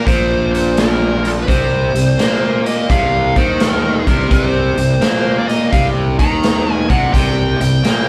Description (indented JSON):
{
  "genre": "blues rock power trio and southern rock",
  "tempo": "85 BPM",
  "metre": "4/4",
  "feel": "swing 66% on 8ths",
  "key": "C minor",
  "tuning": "A4 = 440 Hz",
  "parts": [
    { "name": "smooth overdriven lead guitar", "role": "melody", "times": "0.0-8.1 s", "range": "A4 to Bb5", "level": "-21 LUFS", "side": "equal", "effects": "none" },
    { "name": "distorted electric guitar", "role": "riff", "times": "0.0-8.1 s", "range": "Bb2 to Bb3", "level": "-21 LUFS", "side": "equal", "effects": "distortion" },
    { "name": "fuzz fingered electric bass", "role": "bass", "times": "0.0-8.1 s", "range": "Bb1 to Bb2", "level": "-21 LUFS", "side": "equal", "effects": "overdrive" },
    { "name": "raw garage drum kit", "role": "drums", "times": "0.1-8.1 s", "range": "hi-hat, kick drum, snare drum", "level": "-19 LUFS", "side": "equal", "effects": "none" }
  ],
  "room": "moderate large studio reverb, RT60 1.2 s",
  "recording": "band playing live in one room",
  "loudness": "-15 LUFS",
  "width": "mono",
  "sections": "0.0-8.1 A section",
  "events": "none",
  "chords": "0.0 Cm"
}